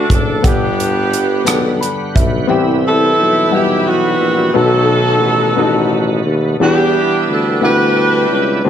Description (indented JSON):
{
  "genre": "slow gospel",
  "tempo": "58 BPM (dotted quarters)",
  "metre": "6/8",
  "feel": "straight",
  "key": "unclear",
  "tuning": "A4 = 437 Hz",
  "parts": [
    { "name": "bright saxophone section", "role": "melody", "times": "0.0-8.6 s", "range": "B3 to B4", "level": "-15 LUFS", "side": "equal", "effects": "slapback echo" },
    { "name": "warm baby grand piano", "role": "accompaniment", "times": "0.0-8.7 s", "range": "G2 to B5", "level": "-18 LUFS", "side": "left 3 dB", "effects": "slapback echo" },
    { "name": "bright tonewheel organ", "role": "sustained chords", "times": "0.0-8.6 s", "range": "D3 to F#5", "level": "-21 LUFS", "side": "right 3 dB", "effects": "slow rotary speaker, overdrive, chorus vibrato" },
    { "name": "warm tuba", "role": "bass", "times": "0.0-8.7 s", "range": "F#1 to E2", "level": "-17 LUFS", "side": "equal", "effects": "none" },
    { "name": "modern studio drum kit", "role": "drums", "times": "0.1-2.3 s", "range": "hi-hat, kick drum, rim click", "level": "-16 LUFS", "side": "equal", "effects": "none" },
    { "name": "group handclap", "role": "percussion", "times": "1.5-1.8 s", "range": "none", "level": "-27 LUFS", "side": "left 5 dB", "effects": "none" }
  ],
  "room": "light reverb, studio reverb",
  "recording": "none",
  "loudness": "-11 LUFS",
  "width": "side -9 dB against mid",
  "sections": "0.0-2.5 A section; 2.5-8.7 B section",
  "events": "grand piano fill 1.5-2.5",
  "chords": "0.4 Gmaj7; 2.5 Cmaj7; 4.6 B7; 6.6 Em7"
}